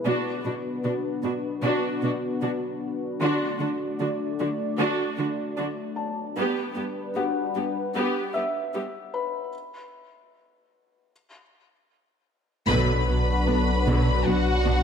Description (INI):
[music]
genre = cinematic, hybrid orchestral and electronic film score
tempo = 76 BPM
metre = 4/4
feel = straight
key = B phrygian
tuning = A4 = 440 Hz
[part]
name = dark analog pad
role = sustained chords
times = 0.0-14.8 s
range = F#3 to D5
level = -29 LUFS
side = left 2 dB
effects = chorus
[part]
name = felt-muted upright piano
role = texture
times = 0.0-14.8 s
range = F#4 to E6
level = -32 LUFS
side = left 3 dB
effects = ping-pong delay
[part]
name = warm symphonic viola section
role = accompaniment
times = 0.1-14.7 s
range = D3 to G4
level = -29 LUFS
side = right 1 dB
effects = none
[part]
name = warm studio cello section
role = bass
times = 0.1-14.7 s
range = G2 to D3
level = -31 LUFS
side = right 2 dB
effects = none
[part]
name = warm symphonic violin section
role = melody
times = 12.7-14.8 s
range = F#5 to B5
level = -29 LUFS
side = left 4 dB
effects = none
[part]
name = warm symphonic violin section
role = second line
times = 12.7-14.8 s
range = F#4 to B4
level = -30 LUFS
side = left 2 dB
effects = none
[part]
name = chorused synth bass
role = riff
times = 12.7-14.8 s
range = B2 to B3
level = -29 LUFS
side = right 2 dB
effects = none
[part]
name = rich studio double bass section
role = bass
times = 12.7-14.7 s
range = B1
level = -30 LUFS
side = right 2 dB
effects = none
[part]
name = soft dub sub bass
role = bass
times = 12.7-14.8 s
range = B1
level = -25 LUFS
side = equal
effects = none
[sound]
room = moderate scoring stage reverb, RT60 1.9 s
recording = high-pass filter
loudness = -24 LUFS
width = side -7 dB against mid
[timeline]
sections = 0.0-12.7 A section; 12.7-14.8 B section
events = build-up 0.0-12.7; filter sweep 0.0-12.7; break 9.5-12.7; band accent 12.7-13.5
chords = 0.1 Bm; 3.2 D; 6.4 G; 9.5 N.C.; 12.7 Bm